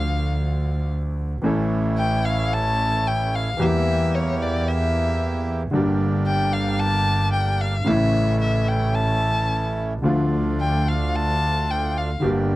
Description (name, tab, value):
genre	tango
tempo	111 BPM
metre	4/4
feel	rubato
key	D harmonic minor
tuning	A4 = 440 Hz
part	warm violin	second line	0.0-12.2 s	C#5 to A5	-25 LUFS	left 3 dB	none
part	clear concert grand piano	accompaniment	0.0-12.6 s	G1 to A4	-24 LUFS	equal	none
part	dark double bass	bass	0.0-12.6 s	G1 to E2	-24 LUFS	right 1 dB	none
part	bandoneon	stabs	1.4-12.6 s	A3 to G4	-30 LUFS	right 3 dB	none
room	little or no reverb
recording	dry, close 1970s-style studio recording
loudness	-19 LUFS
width	side -17 dB against mid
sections	0.0-12.6 A section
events	violin solo 0.0-12.6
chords	0.0 Dm; 1.4 A; 3.6 Edim; 5.7 Gm; 7.9 A; 10.0 Dm